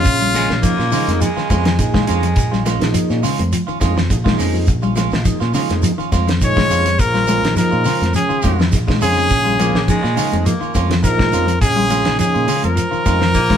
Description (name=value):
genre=afrobeat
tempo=104 BPM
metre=4/4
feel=swing 53% on 16ths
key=Bb minor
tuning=A4 = 440 Hz
part: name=bright trumpet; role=melody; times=0.0-0.9, 6.4-13.6 s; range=F4 to Db5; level=-18 LUFS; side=left 2 dB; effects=none
part: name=trombone with bucket mute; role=second line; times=0.0-0.9, 6.5-13.6 s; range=Db3 to Ab3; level=-25 LUFS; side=right 4 dB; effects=none
part: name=tonewheel organ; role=accompaniment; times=0.0-13.6 s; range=F3 to Ab4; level=-26 LUFS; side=right 2 dB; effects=slow rotary speaker
part: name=fingered electric bass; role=bass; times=0.0-13.6 s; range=Bb1 to Bb2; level=-20 LUFS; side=equal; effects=none
part: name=shekere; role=percussion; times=0.0-13.6 s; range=none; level=-26 LUFS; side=right 2 dB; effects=none
part: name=damped 70s drum kit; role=drums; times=0.1-13.6 s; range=hi-hat, kick drum, snare drum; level=-20 LUFS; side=equal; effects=none
part: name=semi-hollow electric guitar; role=arpeggios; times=0.2-13.6 s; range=Db3 to Ab3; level=-23 LUFS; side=left 4 dB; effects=none
part: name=semi-hollow electric guitar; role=stabs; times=0.2-13.6 s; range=Ab3 to F4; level=-25 LUFS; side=right 8 dB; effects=none
part: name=raspy baritone saxophone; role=second line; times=0.3-2.9, 9.6-13.6 s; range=Ab3 to Bb3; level=-23 LUFS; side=right 1 dB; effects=none
part: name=congas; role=percussion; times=0.3-13.6 s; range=none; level=-26 LUFS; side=equal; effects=none
room=moderate stone room reverb, RT60 1.2 s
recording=band playing live in one room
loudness=-14 LUFS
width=side -9 dB against mid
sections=0.0-13.6 A section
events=none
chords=0.0 Bbm7